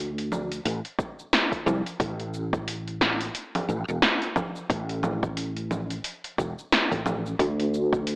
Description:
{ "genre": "sunset chillout", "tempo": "89 BPM", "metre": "4/4", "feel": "swing 58% on 16ths", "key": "A minor", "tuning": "A4 = 440 Hz", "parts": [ { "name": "fretless electric bass", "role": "bass", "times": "0.0-8.2 s", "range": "E1 to D2", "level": "-28 LUFS", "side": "equal", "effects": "ensemble chorus" }, { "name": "deep house drum kit", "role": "drums", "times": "0.2-8.2 s", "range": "congas, hi-hat, shaker, snare drum", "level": "-25 LUFS", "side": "equal", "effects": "overdrive" }, { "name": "electronic kick drum", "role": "drums", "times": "1.0-8.0 s", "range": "none", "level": "-29 LUFS", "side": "equal", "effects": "overdrive" } ], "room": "light reverb", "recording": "AM radio sound", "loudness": "-24 LUFS", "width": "side -25 dB against mid", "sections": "0.0-8.2 A section", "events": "none", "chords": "none" }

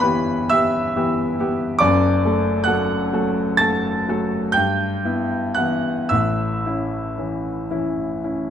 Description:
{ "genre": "classical, romantic nocturne for solo piano", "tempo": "36-48 BPM (dotted quarters)", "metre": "9/8", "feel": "rubato", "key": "D major", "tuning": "A4 = 440 Hz", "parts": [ { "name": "warm grand piano", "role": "solo", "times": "0.0-8.5 s", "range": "F#1 to A6", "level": "-18 LUFS", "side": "equal", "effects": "none" } ], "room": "moderate recital hall reverb, RT60 1.8 s", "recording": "close, detailed microphones", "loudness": "-18 LUFS", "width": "side -9 dB against mid", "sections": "0.0-8.5 A section", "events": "none", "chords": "0.0 Em/G; 1.8 D/F#; 4.5 Em/G; 6.1 A" }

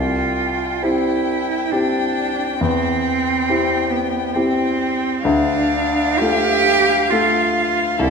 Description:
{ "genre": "classical, slow romantic movement for piano trio", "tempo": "67 BPM", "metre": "3/4", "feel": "rubato", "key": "unclear", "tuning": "A4 = 440 Hz", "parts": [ { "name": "rich violin", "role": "melody", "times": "0.0-8.1 s", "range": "A4 to G5", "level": "-24 LUFS", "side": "left 8 dB", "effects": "none" }, { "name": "clear cello", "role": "second line", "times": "0.0-8.1 s", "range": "B3 to G4", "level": "-19 LUFS", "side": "right 6 dB", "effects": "none" }, { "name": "warm concert grand piano", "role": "accompaniment", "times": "0.0-8.1 s", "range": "C2 to A4", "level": "-20 LUFS", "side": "left 2 dB", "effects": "none" } ], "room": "wet recital hall reverb, RT60 1.7 s", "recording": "minimal, uncompressed stereo recording", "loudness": "-16 LUFS", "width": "side -5 dB against mid", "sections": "0.0-8.1 A section", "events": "none", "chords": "0.0 C; 2.6 C/E; 5.2 Dm" }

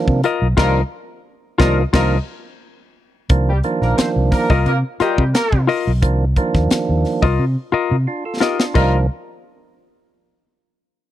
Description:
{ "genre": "funk", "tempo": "88 BPM", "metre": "4/4", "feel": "straight", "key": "C minor", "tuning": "A4 = 442 Hz", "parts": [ { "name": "percussive tonewheel organ", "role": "stabs", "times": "0.0-9.1 s", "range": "Eb3 to A4", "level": "-22 LUFS", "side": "right 4 dB", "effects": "overdrive, stopped rotary speaker" }, { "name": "fingered electric bass", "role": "bass", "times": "0.1-9.1 s", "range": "Bb1 to C3", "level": "-17 LUFS", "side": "equal", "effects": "none" }, { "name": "tight funk drum kit", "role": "drums", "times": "0.1-8.9 s", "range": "crash cymbal, hi-hat, kick drum, snare drum", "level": "-18 LUFS", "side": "equal", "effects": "none" }, { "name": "semi-hollow electric guitar", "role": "accompaniment", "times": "0.2-9.0 s", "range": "F4 to Eb5", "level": "-19 LUFS", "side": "left 7 dB", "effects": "none" }, { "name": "mellow horn section", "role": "second line", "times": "0.6-9.0 s", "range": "G3 to C5", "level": "-24 LUFS", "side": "right 1 dB", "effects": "none" } ], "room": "small room ambience", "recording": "dry, close 1970s-style studio recording", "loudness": "-15 LUFS", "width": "side -13 dB against mid", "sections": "0.0-3.3 A section; 3.3-8.8 B section; 8.8-11.1 C section", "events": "band accent 0.6-3.3; drum fill 7.4-8.8", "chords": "0.0 Cm11" }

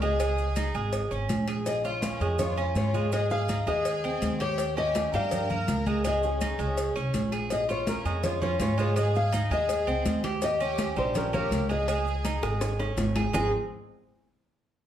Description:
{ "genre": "latin, Cuban son and guajira", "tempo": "164 BPM", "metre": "4/4", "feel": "straight", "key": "Ab major", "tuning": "A4 = 436 Hz", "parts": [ { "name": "nylon-string guitar", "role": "melody", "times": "0.0-13.5 s", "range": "Ab4 to Ab5", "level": "-31 LUFS", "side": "left 2 dB", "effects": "none" }, { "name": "clear studio violin section", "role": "second line", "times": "0.0-13.5 s", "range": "C4 to Bb4", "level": "-37 LUFS", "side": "equal", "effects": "none" }, { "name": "Cuban tres", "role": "arpeggios", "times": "0.0-13.5 s", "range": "G3 to Ab4", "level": "-31 LUFS", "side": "right 3 dB", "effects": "none" }, { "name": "upright bass", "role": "bass", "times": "0.0-13.5 s", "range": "Ab1 to Ab2", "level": "-31 LUFS", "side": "equal", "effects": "none" }, { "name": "maracas", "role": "percussion", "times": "0.0-13.4 s", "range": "none", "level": "-46 LUFS", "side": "right 6 dB", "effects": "none" }, { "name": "congas", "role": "percussion", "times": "0.2-13.4 s", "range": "none", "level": "-33 LUFS", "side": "equal", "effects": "none" }, { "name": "cowbell and bongos", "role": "percussion", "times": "0.2-13.4 s", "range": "none", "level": "-36 LUFS", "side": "left 2 dB", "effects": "none" } ], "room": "wet large studio reverb, RT60 0.9 s", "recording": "heard from further back in the room", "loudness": "-25 LUFS", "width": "side -10 dB against mid", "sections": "0.0-7.5 A section; 7.5-13.3 B section; 13.3-14.8 C section", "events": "drum fill 12.4-13.3", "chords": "0.2 Dbsus2; 1.7 Bbm7; 3.1 Ab; 4.6 Eb7; 6.0 Dbsus2; 7.5 Bbm7; 9.0 Ab; 10.4 Eb7; 11.9 Dbsus2; 13.3 Ab5" }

